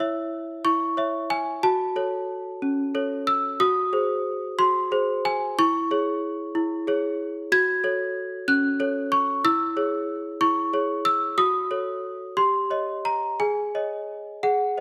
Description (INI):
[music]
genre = classical, lullaby for celesta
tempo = 61 BPM (dotted quarters)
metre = 6/8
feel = straight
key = C# minor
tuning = A4 = 440 Hz
[part]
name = worn celesta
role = solo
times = 0.0-14.8 s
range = C#4 to G#6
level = -24 LUFS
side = equal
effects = none
[sound]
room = moderate recital hall reverb, RT60 1.6 s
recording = none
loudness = -24 LUFS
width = mono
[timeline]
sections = 0.0-14.8 A section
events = none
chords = 0.0 C#m/E; 1.6 F#m; 3.6 G#7/F#; 5.6 C#m/E; 7.5 F#m; 9.4 C#m/E; 11.4 D#m7b5/F#; 12.4 D#7/G; 13.4 G#sus4